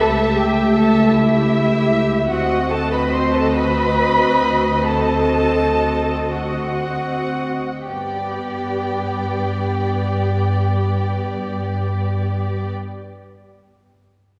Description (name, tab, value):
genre	classical, slow romantic movement for string orchestra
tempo	36-53 BPM (dotted quarters)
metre	12/8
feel	rubato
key	G major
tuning	A4 = 440 Hz
part	muted studio violin section	melody	0.0-12.7 s	D5 to E5	-30 LUFS	equal	none
part	muted chamber violin section	second line	0.0-12.7 s	E5 to C6	-27 LUFS	equal	none
part	muted studio viola section	accompaniment	0.0-12.7 s	A3 to G4	-24 LUFS	equal	none
part	muted chamber cello section	bass	0.0-12.7 s	E4 to C5	-26 LUFS	equal	none
part	muted chamber double bass section	bass	0.0-12.7 s	C#2 to G2	-25 LUFS	equal	none
room	wet concert hall reverb, RT60 2.1 s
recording	none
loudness	-19 LUFS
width	mono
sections	0.0-7.9 A section; 7.9-14.0 B section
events	slowing down 0.0-7.9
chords	0.0 A7/C#; 2.3 D7b9; 7.9 G